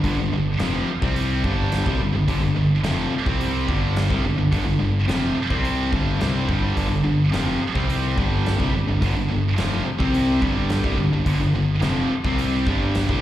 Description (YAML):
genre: hard rock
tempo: 107 BPM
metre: 4/4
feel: straight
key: unclear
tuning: A4 = 440 Hz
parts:
  - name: heavy high-gain guitar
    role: riff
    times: 0.0-13.2 s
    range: F2 to C4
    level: -26 LUFS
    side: right 6 dB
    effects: distortion
  - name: heavy high-gain guitar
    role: riff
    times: 0.0-13.2 s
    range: F2 to C4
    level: -28 LUFS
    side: equal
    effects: distortion, slapback echo
  - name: overdriven semi-hollow guitar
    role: riff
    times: 0.0-13.2 s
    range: F2 to C4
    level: -24 LUFS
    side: left 3 dB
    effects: none
  - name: modern bright fingered electric bass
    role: bass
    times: 0.0-13.2 s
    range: F1 to C2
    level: -24 LUFS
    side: equal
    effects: none
  - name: gated 80s drum kit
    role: drums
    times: 0.0-13.2 s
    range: hi-hat, kick drum, snare drum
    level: -26 LUFS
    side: equal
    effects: none
room: moderate club reverb, RT60 0.5 s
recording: live gig heard through the venue's PA, recital hall reverb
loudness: -19 LUFS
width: side -13 dB against mid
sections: 0.0-13.2 A section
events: none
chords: 0.0 G5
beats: | 0.05 0.61 1.17 1.73 | 2.29 2.85 3.41 3.97 | 4.53 5.09 5.65 6.21 | 6.77 7.33 7.89 8.46 | 9.02 9.58 10.14 10.70 | 11.26 11.82 12.38 12.95